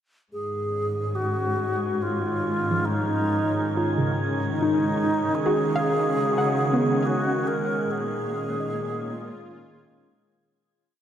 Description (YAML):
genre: ambient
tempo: 71 BPM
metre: 3/4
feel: straight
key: unclear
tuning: A4 = 440 Hz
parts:
  - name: bright alto flute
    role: melody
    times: 0.3-10.0 s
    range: D#4 to A#4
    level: -26 LUFS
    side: equal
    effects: shimmer reverb, tape echo
  - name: warm analog pad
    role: sustained chords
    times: 0.3-10.5 s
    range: D#3 to E#4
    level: -30 LUFS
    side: right 1 dB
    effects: chorus, tremolo, shimmer reverb
  - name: muted symphonic cello section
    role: bass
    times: 0.3-10.4 s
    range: G#2 to C#3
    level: -30 LUFS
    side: equal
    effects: none
  - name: wind-like tuned noise texture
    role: texture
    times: 1.7-10.5 s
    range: G#6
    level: -40 LUFS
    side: right 3 dB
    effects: built-in reverb, shimmer reverb
  - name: soft round pluck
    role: arpeggios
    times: 2.7-10.8 s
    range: C#3 to F#5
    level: -28 LUFS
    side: equal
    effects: chorus, shimmer reverb, tape echo
room: wet cathedral reverb, RT60 6.2 s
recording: in a vast, echoing space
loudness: -22 LUFS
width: side -10 dB against mid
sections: 0.3-10.5 A section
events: fade-in on analog synth pad 0.3-10.5; fade-in on synth texture 0.3-10.5; fade-out 7.1-10.5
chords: 0.3 G#5; 5.4 C#7sus4; 7.9 A#m7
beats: | 0.33 1.17 2.02 | 2.86 3.71 4.55 | 5.40 6.25 7.09 | 7.93 8.78 9.62